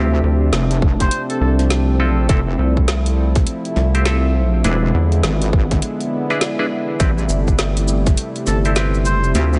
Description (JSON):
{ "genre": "glitch hop", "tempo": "102 BPM", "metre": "4/4", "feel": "swing 62% on 16ths", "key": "A minor", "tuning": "A4 = 440 Hz", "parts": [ { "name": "warm analog pad", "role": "sustained chords", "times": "0.0-9.6 s", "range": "C3 to E4", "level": "-26 LUFS", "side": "equal", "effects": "chorus, sidechain pumping" }, { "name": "clav", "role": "stabs", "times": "0.0-9.6 s", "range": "C4 to C5", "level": "-28 LUFS", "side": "equal", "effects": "sidechain pumping, diffuse ambient delay" }, { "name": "wobble bass", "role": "bass", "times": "0.0-9.6 s", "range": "E1 to D2", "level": "-20 LUFS", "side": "equal", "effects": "chorus" }, { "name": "deep dark ambient pad", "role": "texture", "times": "0.0-9.6 s", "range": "F3 to A5", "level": "-28 LUFS", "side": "equal", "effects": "chorus, built-in reverb, sidechain pumping" }, { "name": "rubbery square bass", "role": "bass", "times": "0.2-9.3 s", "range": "G1 to E2", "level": "-19 LUFS", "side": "equal", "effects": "none" }, { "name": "drum and bass drum kit", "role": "drums", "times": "0.5-9.6 s", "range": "hi-hat, shaker, snare drum", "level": "-27 LUFS", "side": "equal", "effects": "none" }, { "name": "electronic kick drum", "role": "drums", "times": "0.8-8.2 s", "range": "none", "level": "-19 LUFS", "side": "equal", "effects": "none" }, { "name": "warm trumpet", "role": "melody", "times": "1.0-1.5, 8.5-9.3 s", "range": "A4 to C5", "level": "-29 LUFS", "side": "equal", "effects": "diffuse ambient delay" } ], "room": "light reverb", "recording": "nothing above 10.7 kHz", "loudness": "-17 LUFS", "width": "mono", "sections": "0.0-9.6 A section", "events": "none", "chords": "0.0 Fmaj7; 4.6 E7; 7.0 Am7" }